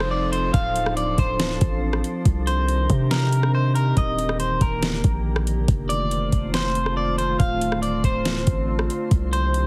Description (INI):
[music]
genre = hip hop, atmospheric cloud-rap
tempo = 140 BPM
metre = 4/4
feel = half-time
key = unclear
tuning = A4 = 440 Hz
[part]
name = electric guitar at the edge of break-up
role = melody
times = 0.0-9.7 s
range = Bb4 to F5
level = -28 LUFS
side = equal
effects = slapback echo
[part]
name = glassy FM pad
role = sustained chords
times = 0.0-9.7 s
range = D3 to C5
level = -30 LUFS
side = equal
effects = ensemble chorus, built-in reverb, sidechain pumping
[part]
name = long sustained 808-style bass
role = bass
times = 0.0-9.7 s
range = D1 to C3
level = -26 LUFS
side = equal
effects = none
[part]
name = smooth R&B drum kit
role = drums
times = 0.0-9.6 s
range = hi-hat, kick drum, rim click, snare drum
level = -25 LUFS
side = equal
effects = none
[part]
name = downlifter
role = sound effects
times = 0.0-2.3 s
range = none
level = -47 LUFS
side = equal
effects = none
[sound]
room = little or no reverb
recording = heavily compressed radio sound, multiband compression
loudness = -22 LUFS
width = mono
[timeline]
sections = 0.0-9.7 A section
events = none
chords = 0.0 F7; 0.5 Dm7; 2.3 Cm9; 4.0 Ebmaj7; 5.7 F7; 7.4 Dm7; 9.1 Cm9